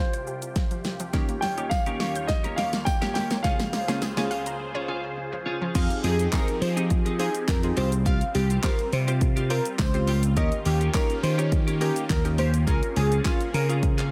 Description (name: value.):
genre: dance-pop.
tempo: 104 BPM.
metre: 4/4.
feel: straight.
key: F minor.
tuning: A4 = 440 Hz.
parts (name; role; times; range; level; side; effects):
warm concert grand piano; melody; 0.0-5.1 s; C5 to G5; -33 LUFS; equal; low-pass filter, digital delay.
analog pluck; accompaniment; 0.0-13.9 s; Db3 to Db5; -36 LUFS; equal; chorus, sidechain pumping, low-pass filter.
filtered supersaw swell; sustained chords; 0.0-14.1 s; C2 to G5; -38 LUFS; equal; phaser, sidechain pumping, low-pass filter.
unison pluck; arpeggios; 0.1-5.7 s; Db3 to G6; -39 LUFS; equal; sidechain pumping, low-pass filter, digital delay.
pop drum kit; drums; 0.1-14.1 s; crash cymbal, handclaps, hi-hat, kick drum, shaker, snare drum; -29 LUFS; equal; none.
twelve-string electric guitar; riff; 1.1-14.1 s; Bb3 to Ab4; -37 LUFS; equal; lush chorus, low-pass filter.
tambourine; percussion; 1.7-13.4 s; none; -49 LUFS; equal; none.
plucky unison lead; melody; 5.8-13.7 s; F4 to F5; -32 LUFS; equal; sidechain pumping, digital delay.
vintage slap bass; bass; 5.8-14.1 s; C2 to F3; -27 LUFS; equal; sidechain pumping.
room: light reverb, digital ambience.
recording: none.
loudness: -25 LUFS.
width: mono.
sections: 0.0-5.8 A section; 5.8-14.1 B section.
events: build-up 0.0-5.8; drum fill 0.0-4.6; filter sweep 0.0-5.8; break 4.6-5.8; drop 5.8-14.1.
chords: 0.0 Csus4; 1.1 Eb7; 3.4 Bbm7/Db; 5.8 Fm7; 7.8 Csus4; 10.4 Eb7; 12.7 Bbm7/Db.